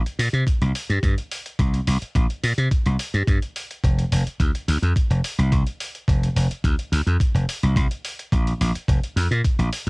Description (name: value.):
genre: nu-disco, nu disco.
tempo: 107 BPM.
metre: 4/4.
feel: straight.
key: unclear.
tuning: A4 = 440 Hz.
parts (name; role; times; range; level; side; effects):
electronic hi-hat; drums; 0.1-9.9 s; none; -33 LUFS; equal; cassette tape.
slap bass; bass; 0.2-9.9 s; F1 to C3; -20 LUFS; equal; none.
electronic kick drum; drums; 0.5-9.6 s; none; -20 LUFS; equal; cassette tape.
room: little or no reverb.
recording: home recording on cassette.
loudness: -19 LUFS.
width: side -36 dB against mid.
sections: 0.0-9.9 A section.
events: none.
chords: none.